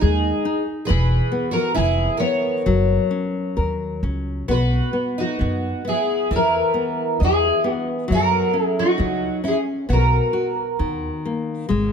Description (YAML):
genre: fado-style ballad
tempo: 67 BPM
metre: 2/4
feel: rubato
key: B major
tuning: A4 = 439 Hz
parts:
  - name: fingerpicked twelve-string acoustic guitar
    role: melody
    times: 0.0-11.2 s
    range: F#4 to C#5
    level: -22 LUFS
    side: left 1 dB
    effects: wide subtle chorus
  - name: picked plugged-in twelve-string acoustic guitar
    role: second line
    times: 0.0-11.2 s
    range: D#4 to A#4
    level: -27 LUFS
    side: right 5 dB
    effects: analog chorus
  - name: nylon-string guitar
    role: accompaniment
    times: 0.0-11.9 s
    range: D#3 to D#5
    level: -25 LUFS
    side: left 3 dB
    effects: none
  - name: upright bass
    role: bass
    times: 0.0-11.9 s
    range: E1 to F#2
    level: -21 LUFS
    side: equal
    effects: none
room: light reverb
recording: close, detailed microphones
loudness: -18 LUFS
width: side -6 dB against mid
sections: 0.0-11.7 A section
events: none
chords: 0.0 G#5; 0.9 E5; 2.7 F#; 4.5 B5; 6.3 E5; 8.1 F#5; 9.9 B5; 10.8 D#5